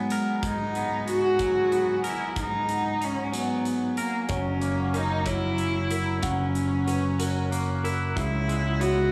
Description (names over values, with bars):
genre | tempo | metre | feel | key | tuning
post-rock | 62 BPM (dotted quarters) | 6/8 | straight | G# minor | A4 = 440 Hz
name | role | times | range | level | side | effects
rich cello | melody | 0.0-9.1 s | A#3 to F#4 | -29 LUFS | equal | analog delay
evolving wavetable pad | sustained chords | 0.0-9.1 s | G#3 to F#6 | -37 LUFS | equal | chorus, built-in reverb, phaser
twangy electric guitar | arpeggios | 0.0-9.1 s | G#2 to A#4 | -34 LUFS | equal | harmonic tremolo, analog delay
huge arena drum kit | drums | 0.1-9.0 s | hi-hat, kick drum | -39 LUFS | equal | none
felt-muted upright piano | arpeggios | 4.3-9.1 s | A#4 to F#5 | -39 LUFS | equal | analog delay
growling picked electric bass | bass | 4.3-9.1 s | F#1 to C#2 | -30 LUFS | equal | overdrive
room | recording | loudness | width
light reverb, small room ambience | studio reverb, faint mains hum | -26 LUFS | mono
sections
0.0-9.1 A section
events
none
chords
0.0 G#m9; 4.3 F#7; 8.2 C#m7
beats
| 0.43 1.40 | 2.37 3.33 | 4.30 5.27 | 6.24 7.20 | 8.17